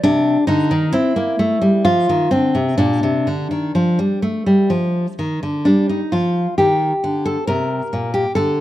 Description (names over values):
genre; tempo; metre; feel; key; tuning
classical, baroque-style dance for nylon-string guitar; 62-69 BPM; 3/4; rubato; Bb major; A4 = 440 Hz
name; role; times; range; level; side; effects
nylon-string guitar; solo; 0.0-8.6 s; Bb2 to Bb4; -15 LUFS; equal; none
room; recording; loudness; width
light reverb; close, detailed microphones; -15 LUFS; side -14 dB against mid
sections
0.0-5.7 A section; 5.7-8.6 A section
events
none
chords
0.0 Cm; 0.9 C7; 1.9 F5; 2.8 Bb (rootless)